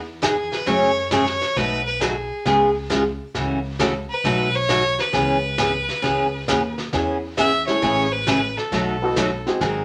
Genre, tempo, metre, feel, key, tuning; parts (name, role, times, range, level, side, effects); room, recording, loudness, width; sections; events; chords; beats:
country, western swing; 134 BPM; 4/4; swing 67% on 8ths; A4 = 437 Hz
upright bass; bass; 0.0-9.8 s; G#1 to F#2; -33 LUFS; equal
clear fiddle; melody; 0.2-9.5 s; G#4 to E5; -26 LUFS; equal
picked steel-string acoustic guitar; accompaniment; 0.2-9.8 s; B2 to G#4; -23 LUFS; equal
vintage brush drum kit; drums; 0.2-9.8 s; brushed snare drum, hi-hat, kick drum, snare drum; -31 LUFS; equal
warm upright piano; accompaniment; 6.9-9.6 s; A3 to A4; -27 LUFS; equal
wet small room reverb, RT60 0.5 s; -21 LUFS; mono
0.0-9.8 A section
0.0 Emaj7; 0.7 F#madd9; 1.6 B7; 2.5 C#7; 3.4 F#m7/C#; 4.2 B7; 5.1 C#m7; 6.9 E6; 7.8 Amaj7; 8.7 B7
0.22 0.67 1.11 | 1.56 2.01 2.46 2.90 | 3.35 3.80 4.25 4.69 | 5.14 5.59 6.04 6.48 | 6.93 7.38 7.83 8.27 | 8.72 9.17 9.61